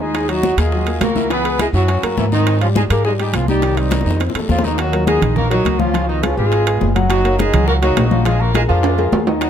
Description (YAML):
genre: latin, salsa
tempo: 207 BPM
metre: 4/4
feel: straight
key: unclear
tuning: A4 = 440 Hz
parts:
  - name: warm horn section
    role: melody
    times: 0.0-9.5 s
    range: Eb3 to Cb5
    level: -19 LUFS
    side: equal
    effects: tape echo
  - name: warm upright piano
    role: accompaniment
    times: 0.0-9.5 s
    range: Eb3 to Gb5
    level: -22 LUFS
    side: left 2 dB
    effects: none
  - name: upright bass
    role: bass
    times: 0.0-9.5 s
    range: Gb1 to Ab2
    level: -18 LUFS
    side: right 1 dB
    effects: none
  - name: bongos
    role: percussion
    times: 0.0-9.5 s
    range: none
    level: -27 LUFS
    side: left 4 dB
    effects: none
  - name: congas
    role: percussion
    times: 0.1-9.5 s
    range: none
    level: -23 LUFS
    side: left 3 dB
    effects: none
  - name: guiro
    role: percussion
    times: 0.1-4.8, 9.4-9.5 s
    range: none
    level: -36 LUFS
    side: left 6 dB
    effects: none
  - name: timbales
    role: percussion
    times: 0.1-9.5 s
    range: none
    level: -23 LUFS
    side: right 7 dB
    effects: none
room: light reverb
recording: close, detailed microphones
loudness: -14 LUFS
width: side -9 dB against mid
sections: 0.0-4.8 A section; 4.8-9.5 B section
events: drum fill 3.9-4.8, 8.8-9.4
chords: 0.1 Ebm7; 1.3 Dbm7; 1.9 Gbadd9; 2.5 Abmaj7; 3.6 Cm; 4.2 F7; 4.8 Ebm7; 5.9 Db7; 7.1 Gb69; 8.3 Bb7